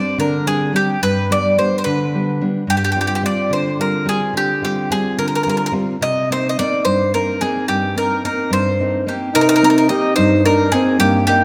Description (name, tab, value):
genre	italian folk, Italian serenade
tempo	72 BPM (dotted quarters)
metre	6/8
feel	straight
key	C minor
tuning	A4 = 439 Hz
part	bowl-back mandolin	melody	0.0-11.4 s	G4 to Eb5	-20 LUFS	equal	none
part	nylon-string guitar	accompaniment	0.0-11.4 s	G2 to F4	-21 LUFS	equal	none
part	warm alto saxophone	second line	9.3-11.4 s	Bb3 to G4	-18 LUFS	equal	none
room	wet concert hall reverb, RT60 2.0 s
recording	none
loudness	-17 LUFS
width	mono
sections	0.0-9.3 A section; 9.3-11.4 A section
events	none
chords	0.0 Gsus4; 1.0 G; 2.7 G7sus4; 6.0 Cm7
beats	0.17 | 1.00 1.84 | 2.67 3.51 | 4.35 5.18 | 6.01 6.84 | 7.67 8.50 | 9.34 10.17 | 11.00